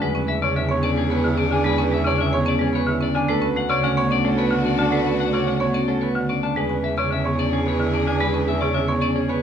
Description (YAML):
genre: classical, minimalist pattern music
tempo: 110 BPM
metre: 3/4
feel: straight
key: unclear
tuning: A4 = 437 Hz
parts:
  - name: clean electric guitar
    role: melody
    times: 0.0-9.4 s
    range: G#4 to A5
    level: -26 LUFS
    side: left 8 dB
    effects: none
  - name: warm French horn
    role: second line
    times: 0.0-9.4 s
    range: F#4 to G#4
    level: -30 LUFS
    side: right 3 dB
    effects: none
  - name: marimba with hard mallets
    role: accompaniment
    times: 0.0-9.4 s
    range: C#3 to C#4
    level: -23 LUFS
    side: equal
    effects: none
  - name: rich chamber string section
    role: sustained chords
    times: 0.0-9.4 s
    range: D4 to G#4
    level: -30 LUFS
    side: left 1 dB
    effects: none
  - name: clear baby grand piano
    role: arpeggios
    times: 0.0-9.4 s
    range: C#4 to C#5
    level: -26 LUFS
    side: right 5 dB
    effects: none
  - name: clear cello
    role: bass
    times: 0.0-9.4 s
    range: D2 to E2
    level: -26 LUFS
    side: right 1 dB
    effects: none
room: moderate recital hall reverb, RT60 1.2 s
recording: close, detailed microphones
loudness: -18 LUFS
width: side -8 dB against mid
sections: 0.0-9.4 A section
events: none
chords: 0.0 E7; 3.3 D6; 6.6 E7